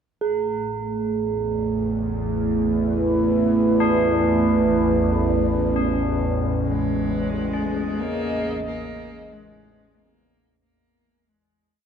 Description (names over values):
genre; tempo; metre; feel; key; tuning
dark ambient drone; 46 BPM; 4/4; straight; unclear; A4 = 445 Hz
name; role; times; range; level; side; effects
dark analog pad; sustained chords; 0.2-10.6 s; A3 to D#5; -22 LUFS; right 2 dB; chorus
bowed-like drone; drone; 1.2-10.7 s; A1 to E2; -25 LUFS; equal; built-in reverb, phaser
quartz singing bowl; texture; 0.2-10.7 s; G#4; -29 LUFS; right 7 dB; none
tubular bells; arpeggios; 3.8-10.6 s; D4 to G#4; -29 LUFS; left 5 dB; tape echo
dark cello; melody; 6.7-10.3 s; G#3 to Bb3; -29 LUFS; left 3 dB; none
room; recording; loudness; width
wet spring reverb, RT60 2.4 s; echo-heavy mix; -19 LUFS; side -7 dB against mid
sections
0.2-10.6 A section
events
fade-in on synth drone 0.2-10.6; fade-out on tubular bells 0.2-10.6; fade-out 5.4-10.6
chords
0.2 A5; 5.4 C#m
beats
| 0.17 1.47 2.77 4.08 | 5.38 6.69 7.99 9.30